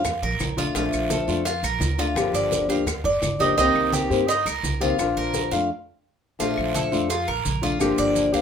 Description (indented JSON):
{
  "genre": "latin, Cuban son and guajira",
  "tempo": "170 BPM",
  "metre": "4/4",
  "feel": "straight",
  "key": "Bb major",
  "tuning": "A4 = 440 Hz",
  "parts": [
    { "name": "flamenco guitar", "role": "accompaniment", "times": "0.0-8.4 s", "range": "C3 to G4", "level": "-23 LUFS", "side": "left 3 dB", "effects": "none" },
    { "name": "Cuban tres", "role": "arpeggios", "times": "0.0-8.4 s", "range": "Eb4 to F5", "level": "-24 LUFS", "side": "right 1 dB", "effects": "none" },
    { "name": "upright bass", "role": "bass", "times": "0.0-8.4 s", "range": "G1 to G2", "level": "-30 LUFS", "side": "right 1 dB", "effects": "none" },
    { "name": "bongos and cowbell", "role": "percussion", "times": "0.0-8.3 s", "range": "none", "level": "-34 LUFS", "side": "left 2 dB", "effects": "none" },
    { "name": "maracas", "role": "percussion", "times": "0.0-8.4 s", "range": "none", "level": "-35 LUFS", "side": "right 8 dB", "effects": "none" },
    { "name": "claves", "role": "percussion", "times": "0.1-8.0 s", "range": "none", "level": "-36 LUFS", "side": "left 5 dB", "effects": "none" },
    { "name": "congas", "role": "percussion", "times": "0.1-8.4 s", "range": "none", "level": "-32 LUFS", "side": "equal", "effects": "none" },
    { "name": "guiro", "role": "percussion", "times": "0.1-8.4 s", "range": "none", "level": "-36 LUFS", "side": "right 5 dB", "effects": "none" }
  ],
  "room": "moderate studio reverb, RT60 0.5 s",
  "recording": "minimal, uncompressed stereo recording",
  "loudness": "-20 LUFS",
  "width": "side -7 dB against mid",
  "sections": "0.0-6.4 A section; 6.4-8.4 A section",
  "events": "stop 5.7-6.4",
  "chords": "0.0 Bbmaj7; 2.2 Gm7; 3.6 Cm7; 5.0 Bb; 6.4 Bbmaj7; 7.8 Gm7"
}